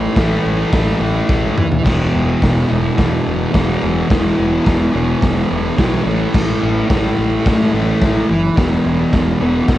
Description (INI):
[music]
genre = garage rock duo or trio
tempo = 107 BPM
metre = 4/4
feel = straight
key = unclear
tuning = A4 = 441 Hz
[part]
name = thick fuzz guitar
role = riff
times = 0.0-9.8 s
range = E2 to A3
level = -16 LUFS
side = equal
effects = distortion, cassette tape
[part]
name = fuzz fingered electric bass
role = bass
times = 0.0-9.8 s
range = E1 to A2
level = -21 LUFS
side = equal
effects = overdrive
[part]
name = raw garage drum kit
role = drums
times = 0.2-9.8 s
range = crash cymbal, hi-hat, kick drum, snare drum, toms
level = -18 LUFS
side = equal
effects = cassette tape
[sound]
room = light reverb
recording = home recording on cassette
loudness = -13 LUFS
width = side -14 dB against mid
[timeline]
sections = 0.0-9.8 A section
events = drum fill 1.3-1.9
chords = 0.0 A5; 1.9 E5; 6.1 A5; 8.6 E5